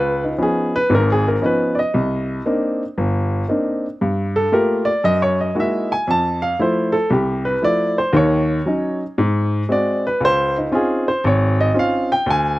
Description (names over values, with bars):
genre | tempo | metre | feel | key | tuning
solo jazz | 116 BPM | 4/4 | swing 67% on 8ths | unclear | A4 = 441 Hz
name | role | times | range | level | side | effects
warm baby grand piano | solo | 0.0-12.6 s | G1 to A5 | -16 LUFS | equal | none
room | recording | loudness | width
little or no reverb | recorded outdoors, with no room sound | -16 LUFS | side -17 dB against mid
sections
0.0-12.6 A section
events
grand piano solo 0.0-12.6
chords
0.0 Db9; 1.9 Cm9; 4.0 Gm9; 5.0 F#13; 6.1 Fmaj7; 8.1 Ebm7; 9.2 Ab7; 10.2 Dbmaj9